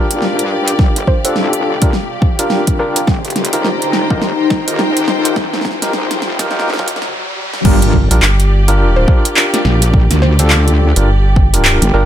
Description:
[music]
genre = glitch hop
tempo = 105 BPM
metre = 4/4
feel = swing 60% on 16ths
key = G minor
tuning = A4 = 440 Hz
[part]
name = woody wave-folded pluck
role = melody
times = 0.0-3.0, 9.0-12.0 s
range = Bb4 to C5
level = -23 LUFS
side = right 1 dB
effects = chorus, ping-pong delay
[part]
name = dark analog pad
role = sustained chords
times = 0.1-12.1 s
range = Eb4 to Bb5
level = -22 LUFS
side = left 2 dB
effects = chorus, phaser, sidechain pumping
[part]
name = overdriven tine electric piano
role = stabs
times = 0.0-12.1 s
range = D4 to Bb4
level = -19 LUFS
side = equal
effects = fast tremolo, sidechain pumping, ping-pong delay
[part]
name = riser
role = sound effects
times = 0.3-7.7 s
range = none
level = -24 LUFS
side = right 1 dB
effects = none
[part]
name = bright symphonic string section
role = texture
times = 0.0-12.1 s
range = F4 to G5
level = -23 LUFS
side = left 2 dB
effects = sidechain pumping
[part]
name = wobble bass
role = bass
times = 0.1-11.9 s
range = F1 to G2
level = -16 LUFS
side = equal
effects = chorus, tube saturation, high-pass filter
[part]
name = pop drum kit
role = drums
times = 0.1-11.9 s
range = crash cymbal, handclaps, hi-hat, snare drum, toms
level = -17 LUFS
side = right 1 dB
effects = overdrive
[part]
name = electronic kick drum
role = drums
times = 0.8-11.5 s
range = none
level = -13 LUFS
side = equal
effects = overdrive
[part]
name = rubbery square bass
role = bass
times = 8.1-12.1 s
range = G1 to Bb1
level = -11 LUFS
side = equal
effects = none
[sound]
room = little or no reverb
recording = high-pass filter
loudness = -11 LUFS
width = side -11 dB against mid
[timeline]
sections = 0.0-7.7 A section; 7.7-12.1 B section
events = build-up 0.0-7.7; drum fill 0.0-7.1, 7.1-7.7; filter sweep 0.0-7.7; riser 0.3-7.7; drop 7.7-12.1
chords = 0.0 Gm7; 3.1 F9sus4; 7.7 Gm7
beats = 0.22 | 0.79 1.36 1.94 2.51 | 3.08 3.65 4.22 4.79 | 5.37 5.94 6.51 7.08 | 7.65 8.22 8.79 9.37 | 9.94 10.51 11.08 11.65

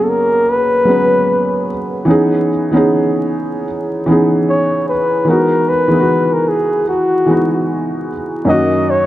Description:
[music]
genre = hip hop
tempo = 75 BPM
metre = 4/4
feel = swing 61% on 16ths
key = C# dorian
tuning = A4 = 441 Hz
[part]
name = breathy flugelhorn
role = melody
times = 0.0-9.1 s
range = F#4 to D#5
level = -15 LUFS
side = left 1 dB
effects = low-pass filter, analog delay
[part]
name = felt-muted upright piano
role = accompaniment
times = 0.0-9.1 s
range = F#2 to B4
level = -14 LUFS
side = equal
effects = low-pass filter
[sound]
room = moderate plate reverb, RT60 2.7 s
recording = dark, warm production, vinyl crackle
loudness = -12 LUFS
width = side -14 dB against mid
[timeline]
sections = 0.0-9.1 A section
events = none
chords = 0.0 G#m11; 2.1 C#m9; 5.3 Emaj9; 8.5 D#m7/F#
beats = 0.47 1.27 | 2.08 2.88 3.67 4.47 | 5.28 6.08 6.88 7.67 | 8.47

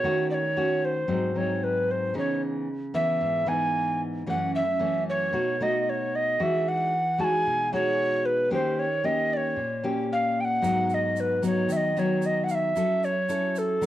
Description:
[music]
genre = bossa nova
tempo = 113 BPM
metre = 4/4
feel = straight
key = C# minor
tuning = A4 = 440 Hz
[part]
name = mellow hollow alto recorder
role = melody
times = 0.0-13.9 s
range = A4 to A5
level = -25 LUFS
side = right 1 dB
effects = plate reverb
[part]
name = nylon-string guitar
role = accompaniment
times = 0.0-13.9 s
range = F#2 to A4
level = -28 LUFS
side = left 1 dB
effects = none
[part]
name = egg shaker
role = percussion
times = 10.6-13.9 s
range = none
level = -48 LUFS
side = right 8 dB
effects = none
[sound]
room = moderate studio reverb, RT60 0.6 s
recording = worn, warbling old tape, cassette tape, warbly pitch drift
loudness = -23 LUFS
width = side -13 dB against mid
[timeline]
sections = 0.0-13.9 A section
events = none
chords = 0.0 D#m7b5; 1.1 G#7; 2.2 C#m9; 4.3 F#m7; 5.3 B7; 6.4 Emaj9; 8.5 D#7; 10.6 G#m7; 12.8 F#m7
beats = | 0.04 0.57 1.10 1.62 | 2.15 2.69 3.21 3.75 | 4.28 4.80 5.33 5.86 | 6.39 6.92 7.46 7.99 | 8.52 9.04 9.57 10.11 | 10.64 11.17 11.70 12.23 | 12.76 13.29 13.82

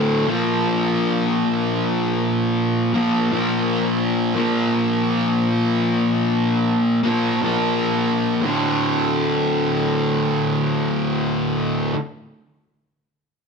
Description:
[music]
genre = metal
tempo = 59 BPM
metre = 4/4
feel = swing 63% on 8ths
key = D minor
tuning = A4 = 440 Hz
[part]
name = fuzz guitar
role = solo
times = 0.0-12.0 s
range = D2 to Bb3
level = -18 LUFS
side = equal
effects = distortion
[sound]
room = moderate large studio reverb, RT60 1.2 s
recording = none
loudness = -18 LUFS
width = side -5 dB against mid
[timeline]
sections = 0.0-8.4 A section; 8.4-12.5 B section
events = none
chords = 0.3 Bb5; 8.4 D5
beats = | 0.28 1.29 2.31 3.33 | 4.36 5.38 6.40 7.42 | 8.44 9.46 10.48 11.50

